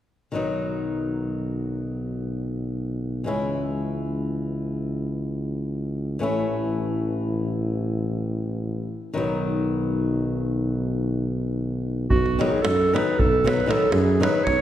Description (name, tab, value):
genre	balkan folk, Balkan wedding band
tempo	free time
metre	none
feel	none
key	B mixolydian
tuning	A4 = 442 Hz
part	flamenco guitar	accompaniment	0.3-14.4 s	D#3 to E4	-28 LUFS	left 2 dB	none
part	mellow tuba	bass	0.3-14.6 s	A1 to F#2	-26 LUFS	equal	none
part	warm clarinet	melody	12.1-14.6 s	F#4 to C#5	-22 LUFS	right 2 dB	none
part	davul	percussion	12.1-14.6 s	none	-26 LUFS	right 1 dB	none
room	wet concert hall reverb, RT60 1.8 s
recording	recorded in a church or concert hall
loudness	-22 LUFS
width	side -11 dB against mid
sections	0.3-12.1 A section; 12.1-14.6 B section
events	none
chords	0.3 B; 3.3 C#m; 6.2 A; 9.2 B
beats	free time